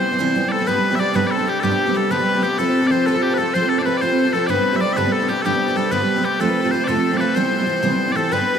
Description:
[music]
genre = celtic folk, Celtic jig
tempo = 126 BPM (dotted quarters)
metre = 6/8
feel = straight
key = unclear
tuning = A4 = 440 Hz
[part]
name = loud bright bagpipes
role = melody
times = 0.0-8.6 s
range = G4 to E5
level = -21 LUFS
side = left 2 dB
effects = analog delay
[part]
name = warm fiddle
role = second line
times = 0.0-8.6 s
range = G4 to D5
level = -24 LUFS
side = left 5 dB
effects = analog delay
[part]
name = picked steel-string acoustic guitar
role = accompaniment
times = 0.0-8.6 s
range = F2 to A4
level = -20 LUFS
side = right 2 dB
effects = analog chorus
[part]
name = pedal harmonium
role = drone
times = 0.0-8.4 s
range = C3 to C4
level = -29 LUFS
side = right 1 dB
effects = none
[sound]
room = wet huge ambient reverb, RT60 8.4 s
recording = dreamy mix soaked in reverb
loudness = -16 LUFS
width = side -7 dB against mid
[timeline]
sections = 0.7-8.3 A section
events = none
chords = 0.0 Cmaj7; 0.7 G; 2.6 F; 4.5 G; 6.4 F; 7.4 Cmaj7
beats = 0.19 | 0.67 1.15 | 1.63 2.10 | 2.58 3.06 | 3.54 4.02 | 4.49 4.97 | 5.45 5.93 | 6.41 6.89 | 7.37 7.84 | 8.32

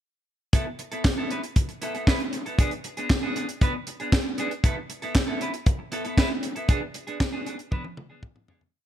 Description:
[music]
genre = early-eighties boogie funk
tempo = 117 BPM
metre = 4/4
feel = straight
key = unclear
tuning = A4 = 440 Hz
[part]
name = clean electric guitar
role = riff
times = 0.5-8.7 s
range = B3 to B4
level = -31 LUFS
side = right 1 dB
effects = wide subtle chorus
[part]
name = tight funk drum kit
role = drums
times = 0.5-8.7 s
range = handclaps, hi-hat, kick drum, snare drum, toms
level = -23 LUFS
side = equal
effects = gated reverb
[sound]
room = little or no reverb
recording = none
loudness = -24 LUFS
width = side -11 dB against mid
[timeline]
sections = 0.5-8.7 breakdown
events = fade-out 6.7-8.7; drum fill 7.7-8.7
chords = 0.5 B7sus4; 2.6 Bm6; 4.6 B7sus4; 6.7 Bm6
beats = | 0.53 1.05 1.56 2.07 | 2.58 3.10 3.61 4.12 | 4.64 5.15 5.66 6.17 | 6.69 7.20 7.71 8.23

